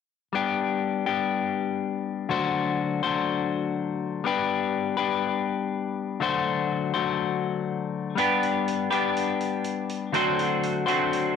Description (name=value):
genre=indie rock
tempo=122 BPM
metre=4/4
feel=straight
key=G major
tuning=A4 = 440 Hz
part: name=biting overdriven guitar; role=riff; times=0.3-11.4 s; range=D3 to C5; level=-24 LUFS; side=left 7 dB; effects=cassette tape
part: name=overdriven semi-hollow guitar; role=riff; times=8.2-11.4 s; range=F#3 to G4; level=-27 LUFS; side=right 12 dB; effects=analog chorus, cassette tape, tape echo
part: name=electronic hi-hat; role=drums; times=8.2-11.2 s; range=none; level=-42 LUFS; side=right 3 dB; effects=cassette tape
room=light reverb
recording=home recording on cassette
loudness=-24 LUFS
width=side -6 dB against mid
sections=0.3-11.4 A section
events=none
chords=0.3 G; 2.3 D7; 4.3 G; 6.2 D7; 8.2 G; 10.1 D7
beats=| 0.34 0.83 1.32 1.81 | 2.30 2.79 3.28 3.77 | 4.26 4.75 5.24 5.73 | 6.22 6.71 7.20 7.69 | 8.18 8.67 9.16 9.65 | 10.13 10.62 11.12